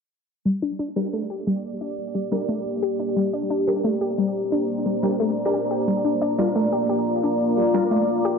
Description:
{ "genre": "dark technical drum and bass", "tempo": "177 BPM", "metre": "4/4", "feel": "straight", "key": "G minor", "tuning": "A4 = 441 Hz", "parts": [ { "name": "deep dark ambient pad", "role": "sustained chords", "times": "1.3-8.4 s", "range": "Bb3 to D5", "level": "-26 LUFS", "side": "right 1 dB", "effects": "chorus, built-in reverb" }, { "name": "warbly dusty pluck", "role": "arpeggios", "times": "0.5-8.3 s", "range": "G3 to G4", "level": "-24 LUFS", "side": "left 2 dB", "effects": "chorus, dub echo" }, { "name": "electronic hi-hat", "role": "drums", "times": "0.5-8.3 s", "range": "none", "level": "-60 LUFS", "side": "left 1 dB", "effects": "none" }, { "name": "deep dark ambient pad", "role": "texture", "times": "1.8-8.4 s", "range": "F4 to Bb5", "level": "-26 LUFS", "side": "left 1 dB", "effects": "chorus, built-in reverb" }, { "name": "orchestra-hit-like synth stab", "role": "stabs", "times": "1.0-7.8 s", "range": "D4 to Bb4", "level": "-29 LUFS", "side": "right 2 dB", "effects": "built-in reverb, dub echo" } ], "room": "moderate plate reverb, RT60 1.9 s", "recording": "low-pass filter", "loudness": "-21 LUFS", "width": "side -5 dB against mid", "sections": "0.5-8.4 A section", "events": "filter sweep on synth arpeggio sound 0.5-8.4; filter sweep on synth stab 0.5-8.4; filter sweep 0.5-8.4", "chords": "0.5 Gm" }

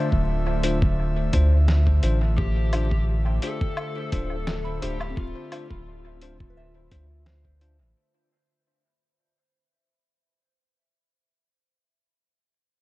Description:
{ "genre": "ambient dub", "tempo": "86 BPM", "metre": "4/4", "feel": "swing 53% on 16ths", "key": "D dorian", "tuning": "A4 = 440 Hz", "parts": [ { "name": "airy breathy pad", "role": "sustained chords", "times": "0.0-8.0 s", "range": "D3 to E5", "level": "-31 LUFS", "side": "right 1 dB", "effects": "chorus" }, { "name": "soft synth bell", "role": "arpeggios", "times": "0.0-10.6 s", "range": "B3 to C6", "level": "-48 LUFS", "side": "right 2 dB", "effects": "chorus, phaser, vintage 12-bit sampler grit, dub echo" }, { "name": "bell-like tine electric piano", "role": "stabs", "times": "0.0-7.8 s", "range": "D4 to C5", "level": "-33 LUFS", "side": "left 4 dB", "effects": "medium stereo tremolo, dub echo" }, { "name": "soft dub sub bass", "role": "bass", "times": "0.1-7.9 s", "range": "D1 to D2", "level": "-22 LUFS", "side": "equal", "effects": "none" }, { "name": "electronic kick drum", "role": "drums", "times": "0.1-7.6 s", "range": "none", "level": "-25 LUFS", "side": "equal", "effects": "overdrive" }, { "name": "lo-fi sampler-style drum kit", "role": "drums", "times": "0.6-7.8 s", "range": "hi-hat, snare drum, woodblock", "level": "-35 LUFS", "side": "equal", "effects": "overdrive, dub echo" }, { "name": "overdriven slide guitar", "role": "melody", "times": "2.4-7.2 s", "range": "F4 to A4", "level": "-37 LUFS", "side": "left 5 dB", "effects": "dub echo" } ], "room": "digital ambience", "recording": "dark, warm production, vinyl crackle, nothing above 10.5 kHz", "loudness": "-21 LUFS", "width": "side -19 dB against mid", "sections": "0.0-8.0 A section", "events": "fade-out 0.5-8.0", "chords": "0.0 Dm7" }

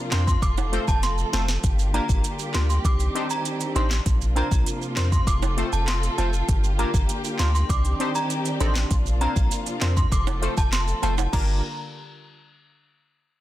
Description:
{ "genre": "dancehall", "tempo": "99 BPM", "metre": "4/4", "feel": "straight", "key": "G minor", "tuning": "A4 = 440 Hz", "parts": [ { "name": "dark studio string section", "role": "sustained chords", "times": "0.0-11.6 s", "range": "C3 to Bb4", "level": "-31 LUFS", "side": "equal", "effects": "sidechain pumping" }, { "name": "synth chime", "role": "melody", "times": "0.1-11.6 s", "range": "A5 to D6", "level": "-30 LUFS", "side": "right 1 dB", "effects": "ensemble chorus, digital delay" }, { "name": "synth brass stab", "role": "accompaniment", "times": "0.1-11.6 s", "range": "A3 to C5", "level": "-30 LUFS", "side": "left 1 dB", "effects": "chorus, sidechain pumping" }, { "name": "punchy sub bass", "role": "bass", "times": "0.1-11.6 s", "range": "F1 to F2", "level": "-23 LUFS", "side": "equal", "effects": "none" }, { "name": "afro-pop drum kit", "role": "drums", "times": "0.1-11.5 s", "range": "crash cymbal, handclaps, hi-hat, kick drum, snare drum", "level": "-24 LUFS", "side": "equal", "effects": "none" }, { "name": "maracas and timbales", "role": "percussion", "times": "0.1-11.6 s", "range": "none", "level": "-34 LUFS", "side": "right 12 dB", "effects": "none" } ], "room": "digital ambience", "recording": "dense, heavily limited modern master", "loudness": "-20 LUFS", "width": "side -14 dB against mid", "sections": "0.0-11.3 A section; 11.3-13.4 B section", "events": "drum fill 1.0-1.6", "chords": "0.4 F; 1.6 Gm7; 2.8 Cmadd9; 4.1 Bbadd9; 5.3 F; 6.5 Gm7; 7.7 Cmadd9; 8.9 Bbadd9; 10.1 F; 11.3 Gm7" }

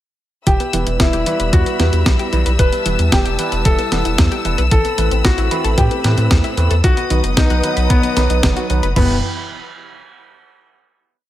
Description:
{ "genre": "italo disco", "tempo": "113 BPM", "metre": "4/4", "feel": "straight", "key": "E harmonic minor", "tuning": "A4 = 440 Hz", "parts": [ { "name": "warm concert grand piano", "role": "melody", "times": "0.5-9.2 s", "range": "B3 to B4", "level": "-22 LUFS", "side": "left 2 dB", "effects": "digital delay" }, { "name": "warm studio string section", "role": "sustained chords", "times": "0.5-9.2 s", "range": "E3 to E6", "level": "-24 LUFS", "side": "left 3 dB", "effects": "none" }, { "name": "analog pluck", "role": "arpeggios", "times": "0.5-9.2 s", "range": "D#3 to B4", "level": "-26 LUFS", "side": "left 1 dB", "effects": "chorus, tape echo" }, { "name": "round analog bass", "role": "bass", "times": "0.5-9.2 s", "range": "E1 to A2", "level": "-17 LUFS", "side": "equal", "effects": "none" }, { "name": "clean 12-bit digital drum machine", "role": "drums", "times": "0.5-9.1 s", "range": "crash cymbal, kick drum, toms", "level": "-16 LUFS", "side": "equal", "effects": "none" }, { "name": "clean 12-bit digital drum machine", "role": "drums", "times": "0.5-8.9 s", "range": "hi-hat, snare drum", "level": "-21 LUFS", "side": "equal", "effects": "none" }, { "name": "overdriven tine electric piano", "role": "stabs", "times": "0.7-9.2 s", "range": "F#3 to B4", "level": "-24 LUFS", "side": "right 4 dB", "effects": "phaser, low-pass filter" } ], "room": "light reverb", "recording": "none", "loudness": "-13 LUFS", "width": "side -13 dB against mid", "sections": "0.5-9.0 verse; 9.0-11.1 final chord", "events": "filter sweep on tine electric piano 0.5-9.0", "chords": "0.5 Em; 4.7 Amadd9; 6.8 B; 9.0 Em" }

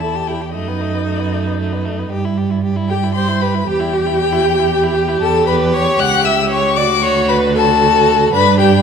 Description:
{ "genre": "quick classical-period movement for string quartet", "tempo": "77 BPM (dotted quarters)", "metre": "6/8", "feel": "straight", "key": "E minor, D major from 5.2 s", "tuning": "A4 = 440 Hz", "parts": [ { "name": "warm violin", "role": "melody", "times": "0.0-8.8 s", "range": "D#5 to F#6", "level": "-18 LUFS", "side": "left 10 dB", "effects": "none" }, { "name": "rich violin", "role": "second line", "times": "0.0-8.8 s", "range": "A3 to G4", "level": "-22 LUFS", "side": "left 4 dB", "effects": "none" }, { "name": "rich viola", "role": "accompaniment", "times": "0.0-8.8 s", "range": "D#4 to F#5", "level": "-18 LUFS", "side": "right 2 dB", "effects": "none" }, { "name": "rich cello", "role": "bass", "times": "0.0-8.8 s", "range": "C#2 to G2", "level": "-18 LUFS", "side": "right 5 dB", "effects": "none" } ], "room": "moderate scoring stage reverb, RT60 1.5 s", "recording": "none", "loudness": "-13 LUFS", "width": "side -6 dB against mid", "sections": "0.0-8.8 A section", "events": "none", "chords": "0.0 Em; 0.5 B7/F#; 2.1 Em/G; 3.7 Em; 5.2 A13; 6.8 D" }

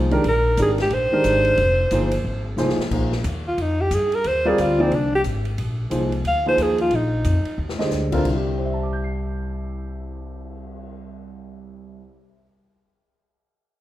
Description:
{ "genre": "modal jazz", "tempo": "180 BPM", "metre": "4/4", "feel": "swing 62% on 8ths", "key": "unclear", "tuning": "A4 = 440 Hz", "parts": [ { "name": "warm grand piano", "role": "accompaniment", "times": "0.0-12.6 s", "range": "C2 to C7", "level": "-24 LUFS", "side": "equal", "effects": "none" }, { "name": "upright bass", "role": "bass", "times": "0.0-12.1 s", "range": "F1 to G2", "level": "-24 LUFS", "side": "left 1 dB", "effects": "none" }, { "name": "open jazz drum kit", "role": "drums", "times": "0.1-10.8 s", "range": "crash cymbal, cymbal swell, hi-hat, kick drum, ride cymbal, snare drum", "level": "-33 LUFS", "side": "left 2 dB", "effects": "none" }, { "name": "warm alto saxophone", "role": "melody", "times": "0.3-7.6 s", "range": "C4 to F5", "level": "-20 LUFS", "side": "right 1 dB", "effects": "none" } ], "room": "moderate recital hall reverb, RT60 1.4 s", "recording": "recorded in a church or concert hall", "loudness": "-18 LUFS", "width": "side -14 dB against mid", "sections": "0.0-2.9 A section; 2.9-8.2 B section; 8.2-10.9 C section", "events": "drum fill 2.6-2.9, 7.6-7.9; alto saxophone solo 2.9-8.2", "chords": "0.0 Bb13sus4; 8.2 C" }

